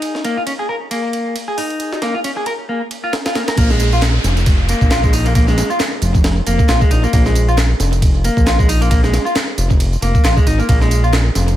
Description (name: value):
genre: breakbeat, breaks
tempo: 135 BPM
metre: 4/4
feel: swing 57% on 16ths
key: unclear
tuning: A4 = 439 Hz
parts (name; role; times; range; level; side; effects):
- clean electric guitar; riff; 0.0-11.1 s; Ab3 to Bb4; -20 LUFS; equal; overdrive, analog delay
- breakbeat sampler-style drum kit; drums; 0.0-11.6 s; hi-hat, kick drum, ride cymbal, snare drum; -17 LUFS; equal; high-pass filter on cymbals, high-pass filter on snare, high-pass filter on hats, high-pass filter on kick, high-pass filter on room, analog delay
- fat analog bass; bass; 3.6-11.6 s; F1 to Bb1; -15 LUFS; equal; none
- electronic tambourine and handclaps; drums; 3.6-11.6 s; none; -27 LUFS; right 1 dB; analog delay
- downlifter; sound effects; 3.6-7.1 s; none; -27 LUFS; equal; none
room: little or no reverb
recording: echo-heavy mix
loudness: -13 LUFS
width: side -13 dB against mid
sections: 0.0-3.6 A section; 3.6-11.6 B section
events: drop 3.6-11.6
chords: 0.0 N.C.; 3.6 Bb5